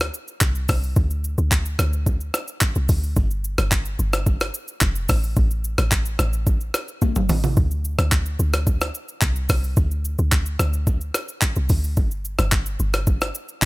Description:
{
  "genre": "amapiano",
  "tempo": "109 BPM",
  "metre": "4/4",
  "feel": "straight",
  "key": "unclear",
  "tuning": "A4 = 439 Hz",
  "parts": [
    { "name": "deep log drum bass", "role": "bass", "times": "0.0-13.7 s", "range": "F1 to D2", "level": "-22 LUFS", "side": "equal", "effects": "none" },
    { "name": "jungle sampler-style drum kit", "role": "drums", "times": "0.0-13.7 s", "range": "handclaps, hi-hat, kick drum, rim click, shaker, toms", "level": "-21 LUFS", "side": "equal", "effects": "overdrive" }
  ],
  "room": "little or no reverb",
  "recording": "none",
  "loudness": "-19 LUFS",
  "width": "side -22 dB against mid",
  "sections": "0.0-13.7 A section",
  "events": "drum fill 7.0-7.6",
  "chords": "none"
}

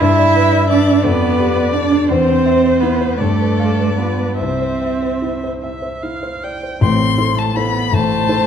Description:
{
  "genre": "classical, slow romantic movement for piano quartet",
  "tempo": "48-58 BPM (dotted quarters)",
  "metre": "6/8",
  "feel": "rubato",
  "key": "C major",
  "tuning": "A4 = 439 Hz",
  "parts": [
    { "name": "rich violin", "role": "melody", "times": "0.0-8.5 s", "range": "A4 to C6", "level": "-20 LUFS", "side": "left 8 dB", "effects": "none" },
    { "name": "warm cello", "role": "second line", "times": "0.0-8.5 s", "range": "A3 to E4", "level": "-17 LUFS", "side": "right 6 dB", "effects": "none" },
    { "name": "dark grand piano", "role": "accompaniment", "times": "0.0-8.5 s", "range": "A1 to F5", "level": "-18 LUFS", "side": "left 2 dB", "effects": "none" },
    { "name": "rich viola", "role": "accompaniment", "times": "0.0-8.5 s", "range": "C5 to G5", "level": "-24 LUFS", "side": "right 1 dB", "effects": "none" }
  ],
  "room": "wet recital hall reverb, RT60 1.7 s",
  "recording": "none",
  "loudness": "-13 LUFS",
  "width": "side -8 dB against mid",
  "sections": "0.0-6.8 A section; 6.8-8.5 A section",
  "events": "none",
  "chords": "0.0 G; 1.0 G7/F; 2.1 C/E; 3.2 G7; 4.4 C; 6.8 Am"
}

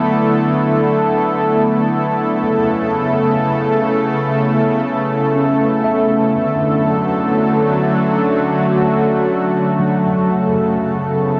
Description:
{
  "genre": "ambient",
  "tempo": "61 BPM",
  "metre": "4/4",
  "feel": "straight",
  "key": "A major",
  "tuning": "A4 = 440 Hz",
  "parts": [
    { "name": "warm analog pad", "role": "sustained chords", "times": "0.0-11.4 s", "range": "C#3 to A4", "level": "-17 LUFS", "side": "equal", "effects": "chorus, tremolo" },
    { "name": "tine electric piano", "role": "arpeggios", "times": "0.0-11.4 s", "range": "F#3 to E5", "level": "-25 LUFS", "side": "equal", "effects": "diffuse ambient delay" },
    { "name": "pedal harmonium", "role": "drone", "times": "0.0-11.4 s", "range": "A3 to A4", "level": "-31 LUFS", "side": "equal", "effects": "none" }
  ],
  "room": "wet huge ambient reverb, RT60 8.9 s",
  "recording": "dark, warm production",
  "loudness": "-16 LUFS",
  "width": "mono",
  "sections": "0.0-11.4 A section",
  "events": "fade-in on tine electric piano 0.0-11.4",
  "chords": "0.0 E7sus4; 2.4 Aadd9; 6.3 D; 10.3 Aadd9"
}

